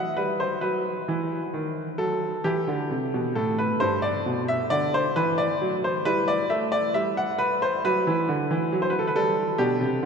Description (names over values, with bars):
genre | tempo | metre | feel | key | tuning
classical, baroque-style suite movement for grand piano | 67 BPM | 4/4 | rubato | E minor | A4 = 440 Hz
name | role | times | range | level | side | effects
bright baby grand piano | solo | 0.0-10.1 s | G2 to F#5 | -22 LUFS | equal | none
room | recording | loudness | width
wet cathedral reverb, RT60 6.5 s | none | -22 LUFS | side -6 dB against mid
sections
0.0-10.1 A section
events
none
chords
0.0 B; 2.5 Em; 6.1 Em/G